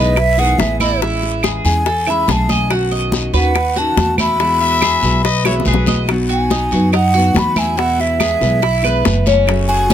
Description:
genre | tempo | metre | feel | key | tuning
latin, Cuban son and guajira | 142 BPM | 4/4 | straight | E major | A4 = 440 Hz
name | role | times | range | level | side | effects
breathy mellow concert flute | melody | 0.0-9.9 s | D#5 to B5 | -17 LUFS | equal | none
fingerpicked steel-string acoustic guitar | accompaniment | 0.0-9.9 s | B2 to F#4 | -22 LUFS | left 2 dB | none
Cuban tres | arpeggios | 0.0-9.9 s | C#4 to E5 | -21 LUFS | right 1 dB | none
upright bass | bass | 0.0-9.9 s | F#1 to F#2 | -18 LUFS | right 1 dB | none
bongos | percussion | 0.2-9.9 s | none | -20 LUFS | left 8 dB | none
claves | percussion | 0.2-9.7 s | none | -20 LUFS | right 5 dB | none
congas | percussion | 0.2-9.9 s | none | -21 LUFS | left 1 dB | none
guiro | percussion | 0.2-9.9 s | none | -28 LUFS | left 4 dB | none
growling trumpet | second line | 4.6-6.1 s | B4 to E5 | -22 LUFS | left 4 dB | tape echo
room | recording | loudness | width
little or no reverb | close, detailed microphones | -12 LUFS | side -10 dB against mid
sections
0.0-6.1 A section; 6.1-9.9 B section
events
drum fill 5.5-6.1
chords
0.0 Emaj7; 1.0 Amaj7; 2.7 Badd9; 4.4 Eadd9; 6.1 B; 7.8 E

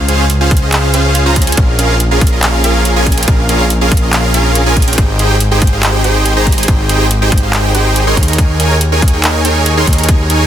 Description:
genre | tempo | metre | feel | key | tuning
future bass | 141 BPM | 4/4 | half-time | Ab major | A4 = 439 Hz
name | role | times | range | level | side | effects
supersaw chords | riff | 0.0-10.5 s | Db4 to C6 | -13 LUFS | right 1 dB | sidechain pumping, digital delay
fat analog bass | bass | 0.0-10.5 s | Ab1 to Eb2 | -13 LUFS | equal | sidechain pumping
trap drum kit | drums | 0.1-10.4 s | handclaps, hi-hat | -17 LUFS | right 1 dB | small room reverb
electronic kick drum | drums | 0.5-10.2 s | none | -11 LUFS | equal | small room reverb
room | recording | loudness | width
little or no reverb | dense, heavily limited modern master | -9 LUFS | side -10 dB against mid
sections
0.0-10.5 A section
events
none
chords
0.0 Dbmaj7; 1.6 Bbm7; 5.0 Abmaj7; 8.2 Eb7sus4

